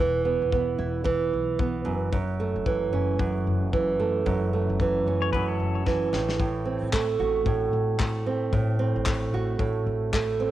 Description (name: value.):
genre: acoustic pop.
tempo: 112 BPM.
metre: 4/4.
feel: swing 60% on 16ths.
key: unclear.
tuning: A4 = 442 Hz.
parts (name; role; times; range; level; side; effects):
nylon-string guitar; accompaniment; 0.0-10.5 s; F#2 to F#4; -24 LUFS; right 3 dB; none.
upright bass; bass; 0.0-10.5 s; E1 to B1; -33 LUFS; left 2 dB; none.
natural country drum kit; drums; 0.5-10.3 s; handclaps, kick drum, snare drum; -28 LUFS; left 2 dB; cassette tape.
pedal steel guitar; second line; 5.2-6.1 s; A4 to C#5; -34 LUFS; left 8 dB; tape echo.
room: light reverb, small room ambience.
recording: home recording on cassette.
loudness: -23 LUFS.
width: side -13 dB against mid.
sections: 0.0-10.5 A section.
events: drum fill 5.9-6.4.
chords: 0.0 E5; 1.9 F#m7; 6.1 Am6.